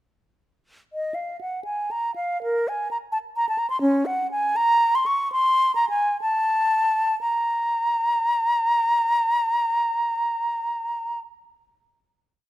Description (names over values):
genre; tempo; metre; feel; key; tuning
classical, baroque-style fantasia for unaccompanied flute; 56-87 BPM (dotted quarters); 6/8; rubato; Bb minor; A4 = 440 Hz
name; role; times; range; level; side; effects
silver concert flute; solo; 0.9-11.2 s; Db4 to Db6; -20 LUFS; equal; none
room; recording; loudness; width
light reverb; close, detailed microphones; -20 LUFS; side -15 dB against mid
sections
0.9-7.2 A section; 7.2-11.1 final note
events
slowing down 3.2-7.2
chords
none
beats
| 0.94 1.67 | 2.43 3.16 | 3.86 4.59 | 5.37 6.23 | 7.22 8.19 | 9.18 10.16